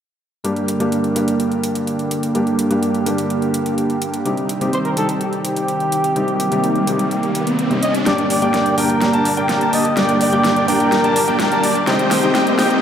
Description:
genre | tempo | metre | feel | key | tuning
EDM, festival progressive house | 126 BPM | 4/4 | straight | G minor | A4 = 440 Hz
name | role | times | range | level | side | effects
felt-muted upright piano | accompaniment | 0.4-12.8 s | G2 to G4 | -20 LUFS | equal | tape echo
lush unison pad | sustained chords | 0.4-12.8 s | D3 to G4 | -23 LUFS | right 1 dB | chorus
big-room dance drum kit | drums | 0.4-12.8 s | hi-hat, snare drum | -24 LUFS | equal | overdrive, high-pass filter on hats, high-pass filter on snare
riser | sound effects | 6.5-12.8 s | none | -26 LUFS | right 1 dB | none
trumpet with bucket mute | melody | 4.7-12.8 s | G4 to Eb5 | -20 LUFS | equal | tape echo
bright baby grand piano | arpeggios | 8.1-12.8 s | G5 to A5 | -23 LUFS | equal | low-pass filter, tape echo
dense compressed supersaw | riff | 8.1-12.8 s | Bb3 to A5 | -19 LUFS | equal | low-pass filter, tape echo
room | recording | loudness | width
wet lush hall reverb, RT60 1.9 s, studio ambience | dreamy mix soaked in reverb, high-pass filter | -15 LUFS | side -8 dB against mid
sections
0.4-8.1 A section; 8.1-12.8 B section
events
riser 6.5-8.1; build-up 8.1-12.8; drum fill 8.1-12.8; filter sweep on supersaw synth 8.1-12.8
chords
0.4 Gm; 4.3 Cm; 8.1 Gm; 11.9 Cm

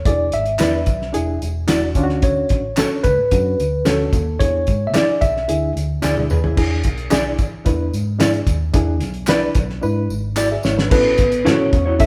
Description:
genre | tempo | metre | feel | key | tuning
uptempo 1960s-style soul | 111 BPM | 4/4 | straight | E mixolydian | A4 = 440 Hz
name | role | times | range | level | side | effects
tine electric piano | melody | 0.0-5.7, 10.9-12.1 s | A4 to E5 | -22 LUFS | equal | none
reed electric piano | accompaniment | 0.1-12.1 s | C#4 to E5 | -26 LUFS | equal | tremolo
vintage muted fingered electric bass | bass | 0.1-12.1 s | E1 to E3 | -25 LUFS | equal | none
cloth-damped thuddy drum kit | drums | 0.1-12.1 s | crash cymbal, hi-hat, kick drum, snare drum, toms | -22 LUFS | equal | none
mellow electric guitar | stabs | 0.6-11.9 s | E4 to D5 | -25 LUFS | equal | none
handclaps and tambourine | percussion | 0.6-10.8 s | none | -34 LUFS | equal | none
hollow-body jazz guitar | riff | 6.2-6.7 s | E4 to B4 | -30 LUFS | equal | none
vibraphone with medium mallets | second line | 10.9-12.1 s | B3 to E4 | -28 LUFS | equal | none
room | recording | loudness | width
wet large studio reverb, RT60 1.2 s | band playing live in one room | -18 LUFS | mono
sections
0.0-6.6 A section; 6.6-10.9 B section; 10.9-12.1 C section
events
drum fill 6.0-6.6, 9.8-10.9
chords
0.1 E7; 2.0 Dmaj7; 4.4 E7; 10.9 A6

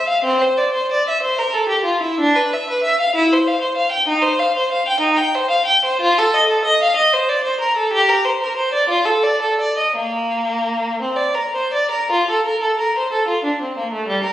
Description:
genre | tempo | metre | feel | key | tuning
classical, baroque-style suite movement for unaccompanied violin | 52-65 BPM (dotted quarters) | 6/8 | rubato | Bb major from 4.1 s | A4 = 439 Hz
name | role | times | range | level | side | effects
warm violin | solo | 0.0-14.3 s | G3 to G5 | -15 LUFS | equal | none
room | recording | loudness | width
wet recital hall reverb, RT60 1.5 s | recorded on a phone in the room, studio reverb, compression | -15 LUFS | side -12 dB against mid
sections
0.0-12.1 A section; 12.1-14.3 A section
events
none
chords
none

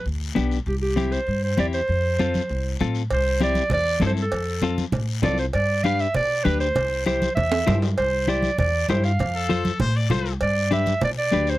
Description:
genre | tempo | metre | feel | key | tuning
latin, cumbia | 197 BPM | 4/4 | straight | C major | A4 = 442 Hz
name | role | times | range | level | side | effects
warm clarinet | melody | 0.0-11.6 s | G4 to F5 | -24 LUFS | right 2 dB | none
upright bass | bass | 0.1-11.6 s | B1 to B2 | -25 LUFS | equal | none
guiro | percussion | 0.1-11.6 s | none | -38 LUFS | left 9 dB | none
semi-hollow electric guitar | accompaniment | 0.4-11.5 s | B3 to C5 | -25 LUFS | left 6 dB | none
congas | percussion | 0.4-11.5 s | none | -27 LUFS | right 1 dB | none
cowbell and timbales | percussion | 3.1-11.2 s | none | -30 LUFS | right 3 dB | none
brilliant trumpet | second line | 9.4-10.3 s | A4 to D5 | -28 LUFS | left 4 dB | none
room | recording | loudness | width
light reverb | dry, close 1970s-style studio recording | -20 LUFS | side -16 dB against mid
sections
0.0-3.1 A section; 3.1-11.6 B section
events
drum fill 7.5-8.0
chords
0.0 G; 0.7 C; 1.9 F; 3.1 C; 4.3 F; 5.5 G; 6.8 C; 9.2 F; 10.4 G

